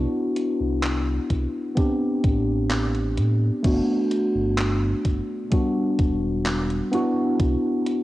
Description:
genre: vaporwave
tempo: 64 BPM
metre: 4/4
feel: straight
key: unclear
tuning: A4 = 440 Hz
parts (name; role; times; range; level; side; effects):
- mellow tine electric piano; accompaniment; 0.0-8.0 s; G3 to G4; -23 LUFS; equal; lush chorus, vintage 12-bit sampler grit, cassette tape, analog delay
- chorused synth bass; bass; 0.0-7.6 s; E1 to A2; -25 LUFS; equal; none
- gated 80s digital drum machine; drums; 0.4-8.0 s; crash cymbal, handclaps, hi-hat; -31 LUFS; equal; gated reverb, overdrive, vintage 12-bit sampler grit
- electronic kick drum; drums; 1.3-7.6 s; none; -22 LUFS; equal; overdrive, vintage 12-bit sampler grit
room: light reverb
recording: home recording on cassette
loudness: -20 LUFS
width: side -16 dB against mid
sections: 0.0-8.0 A section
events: kick drops out 2.7-3.6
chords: 0.0 Cmaj9#11; 1.8 Am11; 3.6 Gmaj9; 5.5 Em7; 6.9 Cmaj9#11

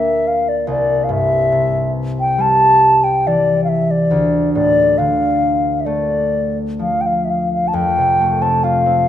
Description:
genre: celtic folk, Celtic slow air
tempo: 61-72 BPM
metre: 4/4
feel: rubato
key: D minor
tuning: A4 = 440 Hz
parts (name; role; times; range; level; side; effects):
- mellow wooden flute; melody; 0.0-9.1 s; D5 to A5; -15 LUFS; left 1 dB; none
- concert harp; accompaniment; 0.0-9.1 s; C2 to F4; -18 LUFS; equal; none
room: moderate concert hall reverb, RT60 2.2 s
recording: minimal, uncompressed stereo recording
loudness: -13 LUFS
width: side -11 dB against mid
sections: 0.0-7.7 A section; 7.7-9.1 B section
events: none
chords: 0.0 C9/D (rootless); 0.7 C; 4.1 Dm; 7.7 F

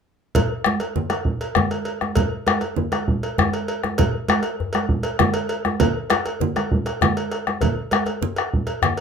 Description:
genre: west african traditional, West African drum ensemble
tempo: 132 BPM (dotted quarters)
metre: 12/8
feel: straight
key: none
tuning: none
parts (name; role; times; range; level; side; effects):
- bombo; percussion; 0.3-9.0 s; none; -21 LUFS; left 2 dB; none
- cowbell; percussion; 0.3-9.0 s; none; -27 LUFS; right 1 dB; none
- congas; percussion; 0.4-9.0 s; none; -25 LUFS; right 5 dB; none
- djembe; percussion; 0.4-9.0 s; none; -28 LUFS; left 4 dB; none
room: wet studio ambience, RT60 0.5 s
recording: minimal, uncompressed stereo recording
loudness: -19 LUFS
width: side -6 dB against mid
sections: 0.3-9.0 A section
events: none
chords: none

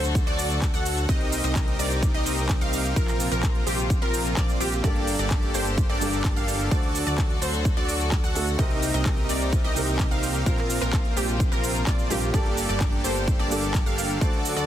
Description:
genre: EDM, festival progressive house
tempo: 128 BPM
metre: 4/4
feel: straight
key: G minor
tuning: A4 = 439 Hz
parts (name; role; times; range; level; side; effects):
- rich chamber string section; sustained chords; 0.0-14.7 s; C3 to A4; -33 LUFS; left 3 dB; sidechain pumping
- wide unison pluck; arpeggios; 0.0-14.7 s; G4 to F#5; -33 LUFS; equal; analog chorus, sidechain pumping, digital delay
- supersaw chords; riff; 0.0-14.7 s; Bb3 to F#5; -29 LUFS; right 1 dB; sidechain pumping, digital delay
- fat analog bass; bass; 0.0-14.7 s; G1 to D2; -29 LUFS; equal; sidechain pumping
- big-room dance drum kit; drums; 0.0-14.7 s; handclaps, hi-hat, shaker; -32 LUFS; right 2 dB; none
- electronic kick drum; drums; 0.2-14.3 s; none; -24 LUFS; equal; overdrive
- felt-muted upright piano; accompaniment; 4.8-14.7 s; G2 to C5; -32 LUFS; right 2 dB; sidechain pumping, digital delay
room: digital ambience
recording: dense, heavily limited modern master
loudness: -21 LUFS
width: side -11 dB against mid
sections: 0.0-14.7 A section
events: none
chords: 0.0 D; 1.1 Cm7; 3.0 Bbsus2; 4.8 Gmadd9; 6.7 D; 8.6 Cm7; 10.5 Bbsus2; 12.3 Gmadd9

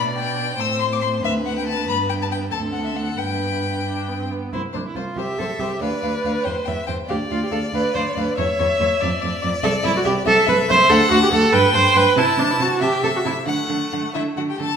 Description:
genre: quick classical-period movement for string quartet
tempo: 88-97 BPM (dotted quarters)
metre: 6/8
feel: rubato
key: G major, C major from 4.5 s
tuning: A4 = 440 Hz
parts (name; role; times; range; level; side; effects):
- rich violin; melody; 0.0-14.8 s; C5 to E6; -27 LUFS; left 8 dB; none
- clear violin; second line; 0.0-14.8 s; E4 to A5; -25 LUFS; left 3 dB; none
- clear viola; accompaniment; 0.0-14.6 s; A3 to Fb5; -20 LUFS; right 2 dB; none
- clear cello; bass; 0.0-14.7 s; C2 to D3; -24 LUFS; right 3 dB; none
room: wet recital hall reverb, RT60 1.2 s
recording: minimal, uncompressed stereo recording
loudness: -17 LUFS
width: side -7 dB against mid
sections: 0.0-4.5 A section; 4.5-14.8 B section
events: none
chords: 0.0 G/B; 0.6 Am; 1.2 D7(no3); 1.9 G; 2.5 D5; 3.2 G; 4.5 C; 5.8 Bdim; 6.5 Cmaj7/E; 7.1 Dm; 8.4 Dbm/Fb; 9.0 Dm/F; 9.6 C69; 10.9 D; 11.5 Gadd11; 12.2 Am/C; 13.5 D

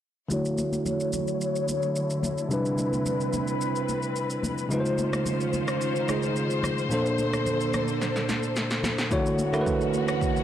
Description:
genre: amapiano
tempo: 109 BPM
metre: 4/4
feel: straight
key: unclear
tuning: A4 = 444 Hz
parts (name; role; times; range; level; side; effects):
- bell-like tine electric piano; accompaniment; 0.3-10.4 s; Bb2 to C#5; -26 LUFS; moving between left 1 dB and right 6 dB; auto-pan, low-pass filter
- warm studio string section; sustained chords; 0.3-10.4 s; D2 to C#5; -30 LUFS; left 4 dB; low-pass filter
- deep house drum kit; drums; 0.3-10.4 s; kick drum, rim click, shaker, snare drum; -32 LUFS; equal; overdrive
- congas; percussion; 0.3-10.1 s; none; -36 LUFS; left 2 dB; none
room: light reverb, studio reverb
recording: blown-out, overdriven recording, overdrive, lossy compression artefacts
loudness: -24 LUFS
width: side -10 dB against mid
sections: 0.3-9.1 A section; 9.1-10.4 B section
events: filter sweep 0.3-9.1; drum fill 8.0-9.1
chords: 0.3 Dmaj9; 2.5 Cmaj9; 4.7 C#maj9; 6.9 Bbmaj9; 9.1 Dmaj9

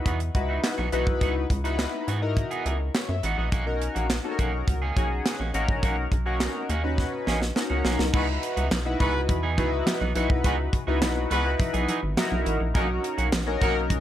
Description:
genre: early-eighties boogie funk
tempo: 104 BPM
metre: 4/4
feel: straight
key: C# dorian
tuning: A4 = 438 Hz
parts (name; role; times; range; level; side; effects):
- chorused polysynth; accompaniment; 0.0-14.0 s; C#4 to F#5; -29 LUFS; left 2 dB; phaser
- clean electric guitar; riff; 0.1-13.9 s; D#3 to G#4; -33 LUFS; right 6 dB; lush chorus
- rubbery square bass; bass; 0.1-14.0 s; G#1 to G#2; -27 LUFS; equal; none
- tight funk drum kit; drums; 0.1-14.0 s; crash cymbal, handclaps, hi-hat, kick drum, snare drum; -27 LUFS; equal; gated reverb
- clear horn section; second line; 8.1-13.8 s; F#3 to B4; -31 LUFS; left 1 dB; analog delay
- congas; percussion; 8.7-14.0 s; none; -34 LUFS; right 2 dB; none
room: small room ambience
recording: none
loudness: -23 LUFS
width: side -11 dB against mid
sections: 0.0-8.1 A section; 8.1-14.0 B section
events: drum fill 7.0-8.1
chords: 0.0 C#m11; 3.5 Bmaj9; 8.1 C#m11; 12.8 Bmaj9

